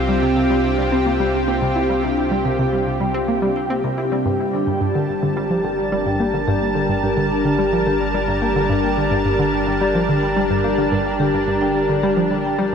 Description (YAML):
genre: ambient, sequencer-driven space music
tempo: 108 BPM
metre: 4/4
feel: straight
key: G minor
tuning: A4 = 440 Hz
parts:
  - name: lush unison pad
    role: sustained chords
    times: 0.0-12.7 s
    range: C3 to A5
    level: -20 LUFS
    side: equal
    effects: chorus, shimmer reverb
  - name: round analog bass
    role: bass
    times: 0.0-12.7 s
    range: G1 to C2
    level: -30 LUFS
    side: equal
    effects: tube saturation
  - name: bubbling stepped-filter texture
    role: texture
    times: 0.0-4.3 s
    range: G4 to G5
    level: -34 LUFS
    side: left 1 dB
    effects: none
  - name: analog pluck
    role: riff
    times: 0.1-12.7 s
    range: G2 to E4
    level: -22 LUFS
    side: equal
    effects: chorus, analog delay
  - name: vibraphone with medium mallets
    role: arpeggios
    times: 0.2-12.7 s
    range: D4 to G5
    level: -24 LUFS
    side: left 3 dB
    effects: auto-pan, low-pass filter, analog delay, shimmer reverb
room: wet huge ambient reverb, RT60 7.8 s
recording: dreamy mix soaked in reverb, cassette tape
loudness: -17 LUFS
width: side -7 dB against mid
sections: 0.0-4.3 A section; 4.3-12.7 B section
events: filter sweep on vibraphone 4.3-12.7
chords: 0.0 Csus4; 4.3 Gmadd9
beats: 0.36 0.92 1.48 | 2.03 2.59 3.14 3.70 | 4.25 4.81 5.36 5.92 | 6.48 7.03 7.59 8.14 | 8.70 9.25 9.81 10.36 | 10.92 11.48 12.03 12.59